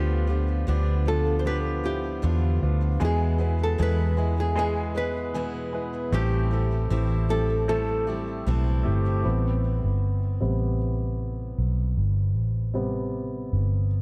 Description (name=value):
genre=pop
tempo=77 BPM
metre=4/4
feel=straight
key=A minor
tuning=A4 = 440 Hz
part: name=nylon-string guitar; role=melody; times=0.0-8.8 s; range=G4 to C5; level=-32 LUFS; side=equal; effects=none
part: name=warm grand piano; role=accompaniment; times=0.0-14.0 s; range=A2 to B4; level=-33 LUFS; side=equal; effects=none
part: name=picked steel-string acoustic guitar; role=arpeggios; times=0.0-9.8 s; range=E2 to F4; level=-37 LUFS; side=equal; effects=digital delay
part: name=vintage muted fingered electric bass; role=bass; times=0.0-14.0 s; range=G1 to E2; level=-27 LUFS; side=equal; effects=none
room=light reverb, small room ambience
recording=dark, warm production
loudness=-25 LUFS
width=mono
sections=0.0-9.2 A section; 9.2-14.0 B section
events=grand piano solo 9.2-14.0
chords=0.0 Bdim/D; 3.0 E; 6.1 Am7